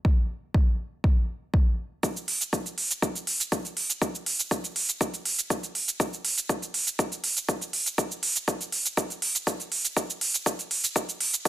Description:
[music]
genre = house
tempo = 121 BPM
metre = 4/4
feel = straight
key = none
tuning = none
[part]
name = electronic kick drum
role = drums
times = 0.0-11.5 s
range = none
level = -25 LUFS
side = equal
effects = high-pass filter on kick, studio reverb, high-pass filter on room
[part]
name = electronic hi-hat and cabasa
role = drums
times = 2.0-11.5 s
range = none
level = -26 LUFS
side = right 3 dB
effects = high-pass filter on hats, studio reverb, high-pass filter on perc
[sound]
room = little or no reverb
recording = dense, heavily limited modern master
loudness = -25 LUFS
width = side -15 dB against mid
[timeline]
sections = 0.0-2.0 A section; 2.0-11.5 B section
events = build-up 2.0-11.5; drum fill 10.0-11.5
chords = none

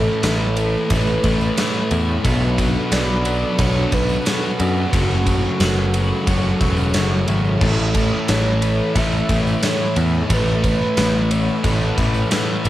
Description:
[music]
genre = rock, shoegaze and dream pop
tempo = 89 BPM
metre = 4/4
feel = straight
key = A major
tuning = A4 = 439 Hz
[part]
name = warm velvety synth lead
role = melody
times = 0.0-12.7 s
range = F#4 to E5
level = -27 LUFS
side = right 2 dB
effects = chorus, cassette tape, tape echo
[part]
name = dark analog pad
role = sustained chords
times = 0.0-12.7 s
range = D4 to C#6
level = -29 LUFS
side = equal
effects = chorus
[part]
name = twelve-string electric guitar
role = arpeggios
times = 0.0-12.7 s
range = A4 to E5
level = -33 LUFS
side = left 5 dB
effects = analog chorus, tape echo
[part]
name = overdriven electric guitar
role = riff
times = 0.0-12.7 s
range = F#2 to B3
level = -27 LUFS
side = equal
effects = none
[part]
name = overdriven semi-hollow guitar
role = riff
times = 0.0-12.7 s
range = A2 to F#4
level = -26 LUFS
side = right 5 dB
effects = reverse reverb
[part]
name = thick fuzz guitar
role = riff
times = 0.0-12.7 s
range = F#2 to B3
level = -24 LUFS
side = left 4 dB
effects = distortion, lush chorus
[part]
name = modern bright picked electric bass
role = bass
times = 0.0-12.7 s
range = E1 to F#2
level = -20 LUFS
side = equal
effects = none
[part]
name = gated 80s drum kit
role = drums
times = 0.2-12.7 s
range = crash cymbal, kick drum, ride cymbal, snare drum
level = -23 LUFS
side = equal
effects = cassette tape
[part]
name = tambourine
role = percussion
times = 0.2-12.7 s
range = none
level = -42 LUFS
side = right 9 dB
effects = none
[sound]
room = light reverb, studio reverb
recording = home recording on cassette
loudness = -16 LUFS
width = side -14 dB against mid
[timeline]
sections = 0.0-12.7 A section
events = none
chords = 0.0 Aadd9; 2.3 Bm7; 4.9 F#m; 7.6 Aadd9

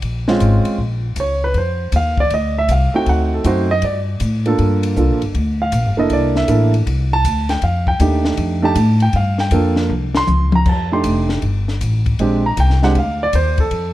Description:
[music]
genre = jazz piano trio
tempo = 158 BPM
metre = 4/4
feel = swing 66% on 8ths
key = F mixolydian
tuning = A4 = 440 Hz
[part]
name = upright bass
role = bass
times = 0.0-13.9 s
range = F1 to A2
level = -17 LUFS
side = left 1 dB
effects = none
[part]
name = compact cocktail drum kit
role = drums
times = 0.0-13.8 s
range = crash cymbal, hi-hat, kick drum, ride cymbal, snare drum, toms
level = -24 LUFS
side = left 2 dB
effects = none
[part]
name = warm grand piano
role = melody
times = 0.3-13.9 s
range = Ab3 to C6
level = -18 LUFS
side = right 2 dB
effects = plate reverb
[sound]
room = light reverb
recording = dark, warm production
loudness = -14 LUFS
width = side -15 dB against mid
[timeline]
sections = 0.0-10.7 A section; 10.7-13.9 A section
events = grand piano solo 0.0-13.9; drum fill 9.9-10.7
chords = 0.0 Bbm7; 1.5 F5; 3.1 D7b9; 4.6 Gm7; 6.1 C13; 7.6 F13; 9.2 Gm7; 9.9 Bbmadd9/C (rootless); 10.7 F13; 12.2 Bb13

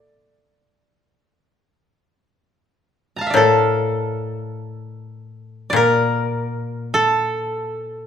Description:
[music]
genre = japanese traditional, Japanese chamber music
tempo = 46-52 BPM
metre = 4/4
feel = rubato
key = D hirajoshi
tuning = A4 = 441 Hz
[part]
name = koto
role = melody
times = 0.0-8.1 s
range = A4 to Bb5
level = -19 LUFS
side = right 1 dB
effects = none
[part]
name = koto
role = accompaniment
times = 3.3-8.1 s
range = A2 to Bb2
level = -22 LUFS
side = left 5 dB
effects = none
[sound]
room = moderate recital hall reverb, RT60 1.4 s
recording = minimal, uncompressed stereo recording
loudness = -17 LUFS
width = side -8 dB against mid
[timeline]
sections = 0.0-3.4 A section; 3.4-8.1 B section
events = none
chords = none

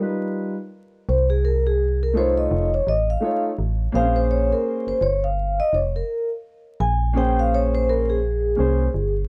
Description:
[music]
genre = hip hop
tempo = 84 BPM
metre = 4/4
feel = swing 59% on 16ths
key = Bb dorian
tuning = A4 = 437 Hz
[part]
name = dark concert grand piano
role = accompaniment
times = 0.0-8.9 s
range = G3 to Db5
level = -27 LUFS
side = equal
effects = none
[part]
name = vibraphone with medium mallets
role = melody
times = 1.1-9.1 s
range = Ab4 to Ab5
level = -25 LUFS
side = equal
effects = none
[part]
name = metallic FM bass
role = bass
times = 1.1-9.2 s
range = F1 to C2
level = -24 LUFS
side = equal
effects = none
[sound]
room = small room ambience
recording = dry, close 1970s-style studio recording, vinyl crackle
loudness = -21 LUFS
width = mono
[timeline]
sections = 0.0-9.3 A section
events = break 0.0-1.1; vibraphone solo 0.0-9.3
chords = 0.0 Gaug7; 1.1 Bbm11/C; 2.5 F7b13; 3.9 Bbm9

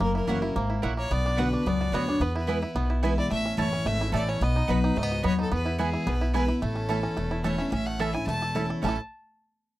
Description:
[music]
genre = bluegrass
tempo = 218 BPM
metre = 4/4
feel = straight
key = A major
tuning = A4 = 440 Hz
[part]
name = clear fiddle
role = melody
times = 0.0-9.0 s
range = G#4 to A5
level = -32 LUFS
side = left 2 dB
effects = none
[part]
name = picked steel-string acoustic guitar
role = accompaniment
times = 0.0-9.0 s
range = E2 to F#4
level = -29 LUFS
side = left 1 dB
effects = none
[part]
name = bluegrass banjo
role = arpeggios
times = 0.0-9.0 s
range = A3 to A4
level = -33 LUFS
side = right 3 dB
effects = none
[part]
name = upright bass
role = bass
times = 0.0-9.0 s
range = E1 to E2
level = -29 LUFS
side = equal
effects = none
[part]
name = mandolin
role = stabs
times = 0.3-8.9 s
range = A#3 to B5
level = -31 LUFS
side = right 6 dB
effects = none
[sound]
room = little or no reverb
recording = dry, close 1970s-style studio recording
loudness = -24 LUFS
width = side -16 dB against mid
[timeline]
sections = 0.0-7.7 A section; 7.7-8.8 B section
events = none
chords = 0.0 F#7; 1.1 Bm; 2.2 E; 3.3 A; 4.4 B; 5.5 E; 6.6 A

